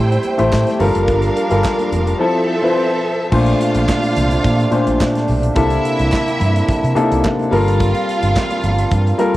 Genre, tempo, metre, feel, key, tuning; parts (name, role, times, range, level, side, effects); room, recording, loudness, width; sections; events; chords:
disco; 107 BPM; 4/4; straight; A4 = 440 Hz
clear studio string section; second line; 0.0-9.4 s; C4 to G5; -22 LUFS; right 2 dB
warm grand piano; accompaniment; 0.0-9.4 s; Bb2 to C5; -17 LUFS; left 2 dB
mellow French horn section; sustained chords; 0.0-9.4 s; Bb2 to G4; -22 LUFS; right 3 dB
overdriven fingered electric bass; bass; 0.0-9.4 s; F1 to C3; -17 LUFS; equal
modern studio drum kit; drums; 0.1-9.4 s; crash cymbal, handclaps, hi-hat, kick drum, snare drum; -23 LUFS; equal
congas; percussion; 0.1-9.3 s; -31 LUFS; equal
group handclap; percussion; 0.5-8.5 s; -32 LUFS; right 5 dB
little or no reverb; home recording on cassette; -13 LUFS; side -16 dB against mid
0.0-3.3 A section; 3.3-9.4 B section
0.0 Am7; 0.8 Gm9; 2.2 Fmaj7; 3.3 Bbmaj9; 5.6 C13; 7.5 Gm9